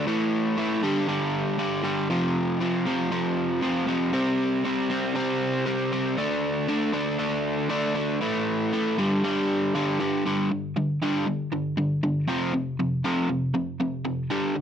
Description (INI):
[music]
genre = rock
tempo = 118 BPM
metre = 4/4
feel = straight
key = unclear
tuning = A4 = 440 Hz
[part]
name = overdriven electric guitar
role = solo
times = 0.0-14.6 s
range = F2 to D4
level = -23 LUFS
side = equal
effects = none
[sound]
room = light reverb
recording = dry, close 1970s-style studio recording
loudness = -23 LUFS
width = side -8 dB against mid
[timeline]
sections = 0.0-10.2 A section; 10.2-14.6 B section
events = none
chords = 0.1 A5; 0.8 G5; 2.1 F5; 4.1 C5; 6.2 D5; 8.2 A5; 9.0 G5; 12.3 F5